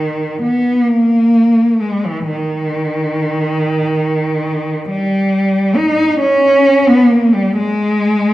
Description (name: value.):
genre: classical, free, expressive piece for unaccompanied cello.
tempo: 42-48 BPM (dotted quarters).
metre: 6/8.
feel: rubato.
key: unclear.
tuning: A4 = 440 Hz.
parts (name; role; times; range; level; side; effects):
warm cello; solo; 0.0-8.3 s; D#3 to D#4; -12 LUFS; equal; none.
room: wet recital hall reverb, RT60 1.5 s.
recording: dark, warm production.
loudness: -12 LUFS.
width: side -16 dB against mid.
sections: 0.0-8.3 A section.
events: none.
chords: none.